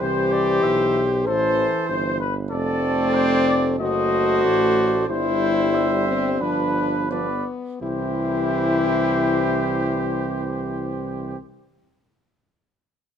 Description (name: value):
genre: classical, brass quintet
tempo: 83-97 BPM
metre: 4/4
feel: straight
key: C major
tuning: A4 = 441 Hz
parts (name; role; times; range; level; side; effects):
- mellow cornet; melody; 0.0-11.4 s; A4 to E5; -28 LUFS; left 6 dB; none
- mellow trumpet; second line; 0.0-11.4 s; G4 to D5; -28 LUFS; right 7 dB; none
- warm French horn; accompaniment; 0.0-11.4 s; B3 to C5; -22 LUFS; left 4 dB; none
- warm euphonium; accompaniment; 0.0-11.4 s; E3 to A3; -28 LUFS; right 3 dB; none
- warm tuba; bass; 0.0-11.4 s; F1 to C2; -26 LUFS; right 4 dB; none
room: light reverb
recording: dark, warm production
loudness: -19 LUFS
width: side -8 dB against mid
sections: 0.0-7.8 A section; 7.8-10.6 B section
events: slowing down 1.3-7.8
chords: 0.0 C; 1.3 Am; 2.5 Dm7/F; 3.8 F#dim7; 5.1 C/G; 6.4 G7; 7.8 C